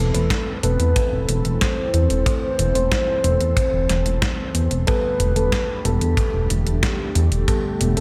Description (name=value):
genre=synthwave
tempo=92 BPM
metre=4/4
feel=straight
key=unclear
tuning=A4 = 441 Hz
part: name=soft octave-layered synth lead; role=melody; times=0.0-8.0 s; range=G4 to C5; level=-28 LUFS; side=equal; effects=chorus, delay, shimmer reverb
part: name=phased analog pad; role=sustained chords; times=0.0-8.0 s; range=D3 to A4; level=-32 LUFS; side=equal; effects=phaser, chorus, sidechain pumping, shimmer reverb
part: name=mellow FM electric piano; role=stabs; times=0.0-8.0 s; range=G3 to C5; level=-30 LUFS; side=equal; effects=chorus, tape echo, shimmer reverb
part: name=chorused synth bass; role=bass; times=0.0-8.0 s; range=E1 to E2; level=-22 LUFS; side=equal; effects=none
part: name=detuned 8-bit digital drum machine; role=drums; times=0.1-8.0 s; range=hi-hat, snare drum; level=-28 LUFS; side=equal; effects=studio reverb, gated reverb
part: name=kick drum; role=drums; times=0.3-7.6 s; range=none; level=-27 LUFS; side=equal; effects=studio reverb
room=light reverb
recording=none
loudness=-20 LUFS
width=mono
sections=0.0-8.0 A section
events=none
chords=0.0 Amadd9/E; 4.9 Gadd9/E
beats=0.31 0.96 1.61 | 2.26 2.92 3.57 4.22 | 4.87 5.52 6.18 6.83 | 7.48